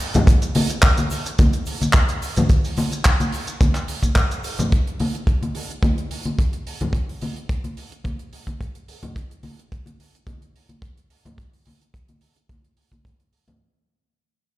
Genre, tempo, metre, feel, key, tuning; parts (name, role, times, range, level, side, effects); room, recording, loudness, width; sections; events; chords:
nu-disco; 108 BPM; 4/4; swing 54% on 16ths
tight funk drum kit; drums; 0.0-13.6 s; handclaps, hi-hat, shaker; -25 LUFS; right 1 dB
tube shaker and congas; percussion; 0.0-13.6 s; -24 LUFS; left 1 dB
kick drum; drums; 0.3-13.2 s; -18 LUFS; equal
light reverb, small room reverb; played on a big sound system in a bare room, stone room reverb; -18 LUFS; side -17 dB against mid
0.0-13.6 A section
fade-out 0.0-13.6